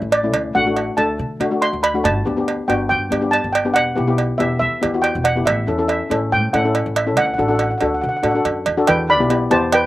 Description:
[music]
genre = calypso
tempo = 140 BPM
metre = 4/4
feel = straight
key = unclear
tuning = A4 = 440 Hz
[part]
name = steel pan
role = accompaniment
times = 0.0-9.8 s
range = A3 to A4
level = -20 LUFS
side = left 3 dB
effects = slapback echo
[part]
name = upright bass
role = bass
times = 0.0-9.9 s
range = E1 to D3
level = -24 LUFS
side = equal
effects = none
[part]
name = steel pan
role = melody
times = 0.1-9.9 s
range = B4 to C6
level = -19 LUFS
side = equal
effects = none
[part]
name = cowbell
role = percussion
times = 0.1-9.8 s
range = none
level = -22 LUFS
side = right 4 dB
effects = none
[sound]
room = little or no reverb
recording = recorded outdoors, with no room sound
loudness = -16 LUFS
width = side -16 dB against mid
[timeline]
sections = 0.0-8.9 A section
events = none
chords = 0.3 D; 2.0 Gadd9; 3.8 Em; 5.5 A; 7.2 D; 8.9 Em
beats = | 0.34 0.77 1.19 1.62 | 2.05 2.48 2.90 3.33 | 3.76 4.18 4.61 5.04 | 5.47 5.89 6.32 6.75 | 7.17 7.60 8.03 8.45 | 8.88 9.31 9.73

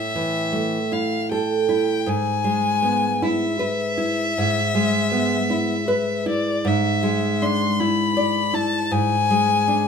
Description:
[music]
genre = romantic duo for violin and classical guitar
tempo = 52 BPM (dotted quarters)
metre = 12/8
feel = rubato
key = unclear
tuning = A4 = 440 Hz
[part]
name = rich violin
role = melody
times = 0.0-9.9 s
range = D5 to C6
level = -23 LUFS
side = left 3 dB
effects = none
[part]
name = nylon-string guitar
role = accompaniment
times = 0.0-9.9 s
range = G#2 to D5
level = -21 LUFS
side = right 1 dB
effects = none
[sound]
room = light reverb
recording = minimal, uncompressed stereo recording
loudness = -19 LUFS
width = side -6 dB against mid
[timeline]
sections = 0.0-9.9 A section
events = none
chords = 0.0 A5; 2.1 E/G#; 6.7 E7/G#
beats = 0.93 | 2.08 3.22 4.37 5.52 | 6.66 7.79 8.92

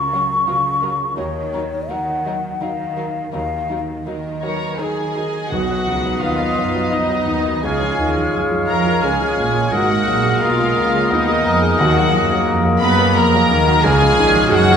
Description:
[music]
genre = cinematic, emotional film score for orchestra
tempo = 86 BPM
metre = 3/4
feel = rubato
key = unclear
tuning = A4 = 443 Hz
[part]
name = mellow hollow concert flute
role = second line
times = 0.0-14.8 s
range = C#5 to F6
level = -23 LUFS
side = left 2 dB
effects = none
[part]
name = warm grand piano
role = accompaniment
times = 0.0-14.8 s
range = B1 to B4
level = -24 LUFS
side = left 1 dB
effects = none
[part]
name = warm studio cello section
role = bass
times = 0.0-14.8 s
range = Gb2 to F#3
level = -24 LUFS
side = right 3 dB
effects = none
[part]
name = warm studio violin section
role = melody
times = 0.1-14.8 s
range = A#4 to Cb6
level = -22 LUFS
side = left 2 dB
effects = none
[part]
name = dark studio violin section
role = second line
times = 0.1-14.8 s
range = D#4 to Cb5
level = -26 LUFS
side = left 2 dB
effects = none
[part]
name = rich studio viola section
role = accompaniment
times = 0.1-14.8 s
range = F#3 to C#5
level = -24 LUFS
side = right 3 dB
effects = none
[part]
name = bright clarinet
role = second line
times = 5.5-14.8 s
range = Ab4 to B4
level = -25 LUFS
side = equal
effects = none
[part]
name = warm oboe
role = second line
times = 5.5-14.8 s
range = Db5 to Eb5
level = -26 LUFS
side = equal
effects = none
[part]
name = warm French horn section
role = sustained chords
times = 5.5-14.8 s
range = Ab3 to Ab4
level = -23 LUFS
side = left 3 dB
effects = none
[part]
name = dark studio double bass section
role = bass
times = 5.5-14.8 s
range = Gb1 to F#2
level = -24 LUFS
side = right 4 dB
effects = none
[part]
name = timpani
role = percussion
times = 11.8-12.8 s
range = Eb3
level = -25 LUFS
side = left 2 dB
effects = none
[sound]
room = wet scoring stage reverb, RT60 2.0 s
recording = minimal, uncompressed stereo recording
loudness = -15 LUFS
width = side -7 dB against mid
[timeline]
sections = 0.0-5.5 A section; 5.5-14.8 B section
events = none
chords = 0.0 F#maj7/C#; 1.2 D#m; 5.5 B; 7.6 Db; 9.7 Abmadd9; 11.8 Ebm; 13.8 Db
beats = 0.48 | 1.18 1.91 2.62 | 3.34 4.07 4.79 | 5.52 6.23 6.92 | 7.65 8.35 9.04 | 9.73 10.42 11.11 | 11.80 12.47 13.16 | 13.84 14.53

